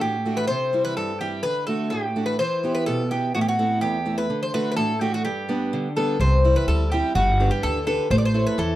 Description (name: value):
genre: greek folk, Greek bouzouki band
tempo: 126 BPM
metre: 2/4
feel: straight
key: G major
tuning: A4 = 441 Hz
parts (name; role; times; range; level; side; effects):
- Greek bouzouki; melody; 0.0-8.8 s; F#4 to D5; -24 LUFS; left 1 dB; none
- fingerpicked steel-string acoustic guitar; accompaniment; 0.0-8.8 s; E2 to C#5; -25 LUFS; right 2 dB; none
- upright bass; bass; 6.2-8.8 s; G1 to E2; -21 LUFS; equal; none
room: small room ambience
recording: dry, close 1970s-style studio recording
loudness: -20 LUFS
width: side -14 dB against mid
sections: 0.0-6.2 A section; 6.2-8.8 B section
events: none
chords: 0.5 C; 1.4 D; 2.4 Em; 3.3 Am; 4.3 D; 5.3 G; 6.2 C; 7.2 G; 8.1 A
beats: 0.01 | 0.48 0.96 | 1.44 1.92 | 2.39 2.87 | 3.35 3.82 | 4.30 4.78 | 5.25 5.73 | 6.20 6.68 | 7.16 7.63 | 8.11 8.58